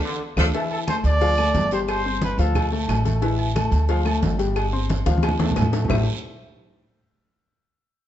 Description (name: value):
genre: latin, salsa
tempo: 179 BPM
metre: 4/4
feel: straight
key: A minor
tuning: A4 = 441 Hz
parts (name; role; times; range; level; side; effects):
- brilliant trombone section; second line; 0.0-0.5 s; D3 to F3; -32 LUFS; equal; none
- brilliant horn section; melody; 0.4-0.5 s; A3 to A4; -29 LUFS; left 1 dB; none
- warm baby grand piano; accompaniment; 0.4-6.1 s; E3 to C6; -27 LUFS; left 4 dB; none
- upright bass; bass; 0.4-6.1 s; G1 to D2; -22 LUFS; equal; none
- claves; percussion; 0.4-6.0 s; none; -39 LUFS; left 3 dB; none
- congas; percussion; 0.4-6.0 s; none; -26 LUFS; right 1 dB; none
- cowbell and bongos; percussion; 0.4-6.0 s; none; -33 LUFS; left 7 dB; none
- guiro; percussion; 0.4-6.0 s; none; -39 LUFS; right 8 dB; none
- timbales and agogo bells; percussion; 0.4-6.0 s; none; -30 LUFS; right 4 dB; none
- warm trumpet; melody; 0.6-2.7 s; A4 to D5; -24 LUFS; right 1 dB; none
room: moderate large studio reverb, RT60 1.2 s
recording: dark, warm production, nothing above 8.0 kHz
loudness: -19 LUFS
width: side -11 dB against mid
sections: 0.5-5.9 A section; 5.9-7.2 B section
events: drum fill 0.0-0.5, 5.1-5.9; band accent 0.0-0.5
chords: 0.0 Dm; 0.5 A5; 1.2 Dm; 1.9 Gsus4; 2.6 Dm; 3.2 A5; 3.9 Dm; 4.6 Gsus4; 5.2 Dm; 5.9 Am7